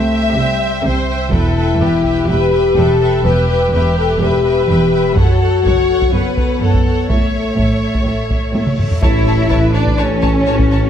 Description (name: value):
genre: cinematic, epic orchestral film score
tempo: 125 BPM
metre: 4/4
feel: straight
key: A mixolydian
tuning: A4 = 442 Hz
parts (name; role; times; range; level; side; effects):
- warm symphonic violin section; melody; 0.0-10.9 s; C#5 to G5; -28 LUFS; left 2 dB; none
- warm symphonic violin section; second line; 0.0-10.8 s; G4 to A5; -22 LUFS; left 1 dB; none
- rich symphonic viola section; accompaniment; 0.0-10.9 s; F#4 to E5; -25 LUFS; right 1 dB; none
- mellow French horn section; sustained chords; 0.0-10.9 s; G3 to B4; -17 LUFS; left 4 dB; none
- rich symphonic cello section; bass; 0.0-10.9 s; E2 to E4; -20 LUFS; right 1 dB; none
- rich symphonic double bass section; bass; 0.0-10.9 s; E1 to C2; -19 LUFS; right 2 dB; none
- solo taiko drums; drums; 1.3-2.3, 5.2-10.9 s; none; -18 LUFS; equal; none
- reverse cymbal and impact; sound effects; 8.7-10.9 s; none; -28 LUFS; equal; none
- mellow tuba; bass; 9.0-10.9 s; A1; -20 LUFS; right 4 dB; none
room: moderate recital hall reverb, RT60 1.5 s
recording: none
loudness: -12 LUFS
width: side -9 dB against mid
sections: 0.0-9.0 A section; 9.0-10.9 A section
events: drum fill 8.5-9.0; reverse cymbal 8.7; impact 9.0-10.9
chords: 0.0 C; 1.3 Em; 5.2 F#m; 7.1 A